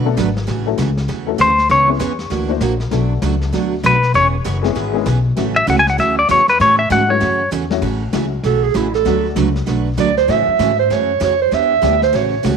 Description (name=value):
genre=country, western swing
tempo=195 BPM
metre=4/4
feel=swing 62% on 8ths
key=A major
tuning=A4 = 440 Hz
part: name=honky-tonk upright piano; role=accompaniment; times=0.0-12.0 s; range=F#3 to C5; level=-23 LUFS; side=left 15 dB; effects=none
part: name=picked steel-string acoustic guitar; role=accompaniment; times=0.0-12.6 s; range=B2 to B4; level=-22 LUFS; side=right 9 dB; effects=none
part: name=upright bass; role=bass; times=0.0-12.6 s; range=E1 to A2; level=-20 LUFS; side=left 2 dB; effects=none
part: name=vintage brush drum kit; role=drums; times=0.2-12.6 s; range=brushed snare drum, crash cymbal, hi-hat, kick drum, snare drum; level=-28 LUFS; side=left 2 dB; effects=none
part: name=clean lap steel guitar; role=melody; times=1.4-7.5 s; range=B4 to G#5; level=-13 LUFS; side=left 2 dB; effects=none
part: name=dark clarinet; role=second line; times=8.5-12.5 s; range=E4 to E5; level=-15 LUFS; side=right 8 dB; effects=slapback echo
room=light reverb, small room ambience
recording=1960s-style stereo with parts hard left and right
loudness=-13 LUFS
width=side -6 dB against mid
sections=0.0-7.8 A section; 7.8-12.6 A section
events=electric slide guitar solo 0.0-7.8; drum fill 7.5-7.8; clarinet solo 7.8-12.6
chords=0.5 A6; 1.7 C#m7; 2.3 F#aug7; 2.9 Bm7; 4.1 E6; 5.4 A6; 9.1 D6; 10.3 A6; 11.5 Em7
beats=0.17 | 0.47 0.78 1.08 1.39 | 1.69 2.00 2.31 2.61 | 2.92 3.22 3.53 3.84 | 4.14 4.45 4.75 5.06 | 5.37 5.67 5.98 6.29 | 6.60 6.90 7.21 7.52 | 7.83 8.13 8.44 8.75 | 9.06 9.37 9.67 9.98 | 10.29 10.60 10.90 11.21 | 11.52 11.83 12.14 12.45